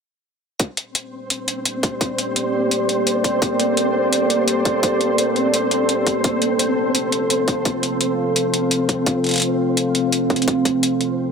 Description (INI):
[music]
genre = half-time drum and bass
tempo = 170 BPM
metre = 4/4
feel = swing 55% on 16ths, half-time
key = G minor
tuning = A4 = 440 Hz
[part]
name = deep dark ambient pad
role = sustained chords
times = 1.6-11.3 s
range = Bb3 to F5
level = -20 LUFS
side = equal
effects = chorus, built-in reverb, sidechain pumping
[part]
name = electronic hi-hat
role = drums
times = 0.6-11.1 s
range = none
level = -21 LUFS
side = left 1 dB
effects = none
[part]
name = electronic kick drum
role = drums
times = 0.6-10.7 s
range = none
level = -22 LUFS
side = equal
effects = high-pass filter on kick, high-pass filter on room
[part]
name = flickering grainy texture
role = texture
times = 1.0-11.2 s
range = C4 to C5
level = -23 LUFS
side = equal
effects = built-in reverb
[sound]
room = wet lush hall reverb, RT60 2.1 s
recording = none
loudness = -17 LUFS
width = side -5 dB against mid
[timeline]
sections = 0.6-11.3 A section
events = none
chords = 0.6 Gmadd9; 6.2 F